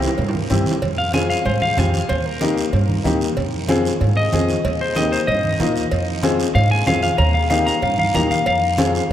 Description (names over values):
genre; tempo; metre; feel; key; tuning
latin, cumbia; 188 BPM; 4/4; straight; F minor; A4 = 444 Hz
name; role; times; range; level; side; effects
clean electric guitar; melody; 0.0-9.1 s; Bb4 to Bb5; -21 LUFS; left 2 dB; spring reverb, slapback echo
warm upright piano; accompaniment; 0.0-9.0 s; Bb3 to Ab4; -22 LUFS; left 3 dB; none
upright bass; bass; 0.0-9.1 s; Eb2 to Ab2; -22 LUFS; right 1 dB; none
guiro; percussion; 0.0-9.1 s; none; -32 LUFS; right 5 dB; none
timbales and cowbell; percussion; 0.1-9.1 s; none; -29 LUFS; right 4 dB; none
congas; percussion; 0.2-9.1 s; none; -24 LUFS; right 2 dB; none
room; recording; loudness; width
wet cathedral reverb, RT60 6.2 s; in a vast, echoing space; -16 LUFS; side -11 dB against mid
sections
0.8-9.1 A section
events
drum fill 0.0-0.8; clean electric guitar solo 0.8-9.1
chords
0.0 C7; 0.8 Fm; 2.1 Eb; 3.4 Fm; 4.6 Eb; 5.9 Fm; 7.2 Eb; 8.5 Fm